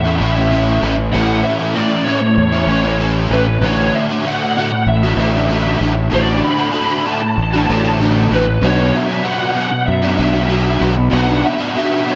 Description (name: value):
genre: post-rock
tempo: 96 BPM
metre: 4/4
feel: straight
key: unclear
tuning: A4 = 442 Hz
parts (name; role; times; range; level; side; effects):
- lead guitar through a small cranked amp; melody; 0.0-12.2 s; B4 to B5; -22 LUFS; equal; overdrive, ensemble chorus, diffuse ambient delay
- crunchy overdriven guitar; riff; 0.0-12.2 s; A2 to F#4; -19 LUFS; equal; ensemble chorus
- fuzz fingered electric bass; bass; 0.0-11.4 s; A1 to F#2; -19 LUFS; equal; overdrive
room: wet plate reverb, RT60 2.4 s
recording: dreamy mix soaked in reverb, nothing above 7.7 kHz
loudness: -15 LUFS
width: mono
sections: 0.0-12.2 A section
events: none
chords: 0.0 A; 3.6 D/A; 8.6 Bm